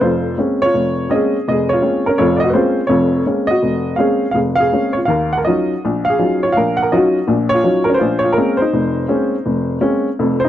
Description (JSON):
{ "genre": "solo jazz", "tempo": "165 BPM", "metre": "4/4", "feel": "swing 65% on 8ths, rubato", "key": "Bb minor", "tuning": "A4 = 440 Hz", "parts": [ { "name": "warm upright piano", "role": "solo", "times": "0.0-10.5 s", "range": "F1 to Gb5", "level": "-13 LUFS", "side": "equal", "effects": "none" } ], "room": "small room ambience", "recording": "dry, close 1970s-style studio recording", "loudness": "-13 LUFS", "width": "side -12 dB against mid", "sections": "0.0-10.5 A section", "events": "none", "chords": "0.0 Bbm9; 5.1 Ebm9; 8.0 Bbm9", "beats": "0.03 0.39 | 0.75 1.11 1.47 1.83 | 2.19 2.55 2.91 3.27 | 3.64 4.00 4.37 4.74 | 5.10 5.47 5.84 6.20 | 6.57 6.93 7.29 7.65 | 8.01 8.38 8.74 9.10 | 9.46 9.83 10.20" }